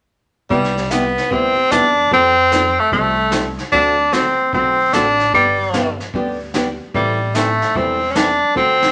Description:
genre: country, western swing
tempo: 149 BPM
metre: 4/4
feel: swing 66% on 8ths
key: C major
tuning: A4 = 438 Hz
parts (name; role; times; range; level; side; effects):
- bright tenor saxophone; melody; 0.5-8.9 s; G3 to D4; -17 LUFS; equal; none
- archtop guitar, miked and amplified; accompaniment; 0.5-8.8 s; C3 to A4; -25 LUFS; equal; none
- upright bass; bass; 0.5-8.9 s; E1 to F2; -29 LUFS; equal; none
- vintage brush drum kit; drums; 0.5-8.9 s; brushed snare drum, hi-hat, kick drum, snare drum; -27 LUFS; equal; none
room: wet studio reverb, RT60 0.9 s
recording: none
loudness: -16 LUFS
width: mono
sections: 0.5-8.9 A section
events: none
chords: 0.5 Cmaj7; 2.1 Fadd9; 3.7 D7; 5.3 G; 6.9 Am7

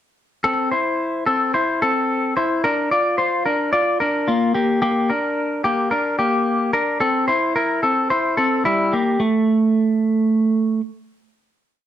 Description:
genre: indie pop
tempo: 110 BPM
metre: 4/4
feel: straight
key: unclear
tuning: A4 = 441 Hz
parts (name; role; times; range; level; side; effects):
- clean electric guitar; solo; 0.4-10.8 s; G3 to D5; -17 LUFS; equal; slapback echo
room: moderate large studio reverb, RT60 0.8 s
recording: none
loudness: -17 LUFS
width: side -11 dB against mid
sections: 0.4-9.2 pre-chorus; 9.2-11.4 final note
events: none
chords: 0.4 Am; 2.6 Bb; 4.6 Gm; 7.0 Am7; 9.2 N.C.

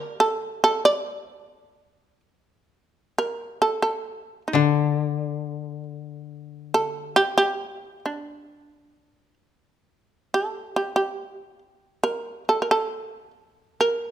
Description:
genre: japanese traditional, Japanese chamber music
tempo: 64-72 BPM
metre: 2/4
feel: rubato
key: unclear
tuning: A4 = 440 Hz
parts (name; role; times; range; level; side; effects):
- shamisen; melody; 0.0-14.1 s; D4 to D5; -22 LUFS; right 2 dB; none
- koto; accompaniment; 4.5-7.2 s; D3; -24 LUFS; left 9 dB; none
room: light reverb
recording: close, detailed microphones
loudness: -22 LUFS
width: side -10 dB against mid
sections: 0.0-2.7 A section; 2.7-14.1 B section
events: none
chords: none

